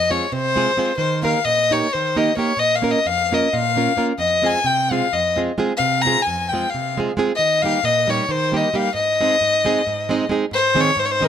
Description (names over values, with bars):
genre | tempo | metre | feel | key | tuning
balkan folk | 263 BPM (eighths) | 7/8 | straight | Ab major | A4 = 441 Hz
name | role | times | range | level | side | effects
dark fiddle | melody | 0.0-11.3 s | Bb4 to Bb5 | -18 LUFS | left 3 dB | none
nylon-string guitar | accompaniment | 0.0-11.3 s | F2 to Bb4 | -22 LUFS | right 4 dB | none
room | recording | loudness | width
moderate small room reverb, RT60 0.5 s | none | -16 LUFS | side -9 dB against mid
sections
0.0-10.5 A section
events
speeding up 0.0-11.3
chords
0.0 Fm; 1.0 Eb; 2.6 Bbm; 4.2 Fm; 7.4 Eb; 8.9 Ab